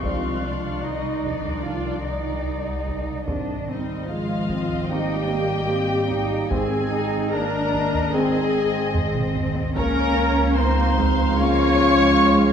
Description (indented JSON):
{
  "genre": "cinematic, suspense film score",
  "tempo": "74 BPM",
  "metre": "4/4",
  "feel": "straight",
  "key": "unclear",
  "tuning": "A4 = 440 Hz",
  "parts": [
    { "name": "muted studio violin section", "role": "melody", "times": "0.0-12.5 s", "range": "D5 to F5", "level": "-32 LUFS", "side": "left 3 dB", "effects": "none" },
    { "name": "muted studio violin section", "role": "second line", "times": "0.0-12.5 s", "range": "D5 to Db6", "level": "-30 LUFS", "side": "left 3 dB", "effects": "none" },
    { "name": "warm clarinet", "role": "second line", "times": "0.0-12.5 s", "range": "F3 to F4", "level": "-29 LUFS", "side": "left 2 dB", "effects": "none" },
    { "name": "muted studio viola section", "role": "accompaniment", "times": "0.0-12.5 s", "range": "D4 to Db5", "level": "-26 LUFS", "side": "equal", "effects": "none" },
    { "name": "dark French horn section", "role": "sustained chords", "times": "0.0-12.5 s", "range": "Eb3 to Db4", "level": "-27 LUFS", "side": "left 2 dB", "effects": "none" },
    { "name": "warm trombone section", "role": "sustained chords", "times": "0.0-12.5 s", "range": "Eb3 to D4", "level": "-32 LUFS", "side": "right 3 dB", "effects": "none" },
    { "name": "muted studio cello section", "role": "bass", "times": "0.0-12.5 s", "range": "Ab3 to F4", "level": "-27 LUFS", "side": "right 2 dB", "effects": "none" },
    { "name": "muted studio double bass section", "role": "bass", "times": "0.0-12.5 s", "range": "Ab1 to Db2", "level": "-27 LUFS", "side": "right 2 dB", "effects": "none" },
    { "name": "swarming drone", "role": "drone", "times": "0.0-12.5 s", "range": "Ab1 to Db2", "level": "-34 LUFS", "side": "equal", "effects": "none" },
    { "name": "taiko ensemble", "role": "drums", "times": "0.0-11.8 s", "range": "none", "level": "-30 LUFS", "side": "equal", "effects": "none" },
    { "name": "muted symphonic violin section", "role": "texture", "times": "0.0-2.8 s", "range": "C6 to G6", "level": "-37 LUFS", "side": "left 5 dB", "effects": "none" }
  ],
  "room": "moderate concert hall reverb, RT60 2.3 s",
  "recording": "small room ambience",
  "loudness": "-19 LUFS",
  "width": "side -8 dB against mid",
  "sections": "0.0-12.5 A section",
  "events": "drum fill 9.0-9.8",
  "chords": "0.0 Cmadd9; 3.3 Ab; 9.8 Db"
}